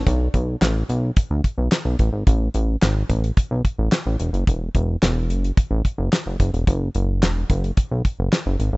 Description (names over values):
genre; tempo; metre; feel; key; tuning
early-eighties boogie funk; 109 BPM; 4/4; straight; unclear; A4 = 440 Hz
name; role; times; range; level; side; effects
chorused synth bass; bass; 0.0-8.8 s; E1 to D2; -20 LUFS; equal; none
damped 70s drum kit; drums; 0.1-8.7 s; handclaps, hi-hat, kick drum, snare drum; -19 LUFS; equal; none
room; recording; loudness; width
small room ambience; rough home demo mix, nothing above 8.0 kHz; -18 LUFS; side -25 dB against mid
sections
0.1-8.8 A section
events
none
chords
none